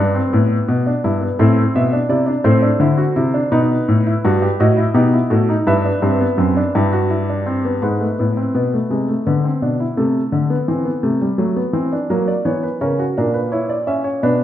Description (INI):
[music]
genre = classical, baroque-style 4-part fugue for grand piano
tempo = 56 BPM (dotted quarters)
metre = 12/8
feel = straight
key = unclear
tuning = A4 = 441 Hz
[part]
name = warm baby grand piano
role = solo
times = 0.0-14.4 s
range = F#2 to E5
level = -15 LUFS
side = equal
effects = none
[sound]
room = moderate recital hall reverb, RT60 1.7 s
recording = none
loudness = -15 LUFS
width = side -11 dB against mid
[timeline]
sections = 0.0-7.8 A section; 7.8-14.4 B section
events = none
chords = 0.0 Em; 1.4 Am; 3.5 B7; 5.7 Em; 7.8 E7/G# (rootless); 10.0 Am/C; 12.1 F#7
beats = 0.33 1.39 2.46 | 3.53 4.60 5.67 6.74 | 7.82 8.89 9.96 11.03 | 12.10 13.16 14.22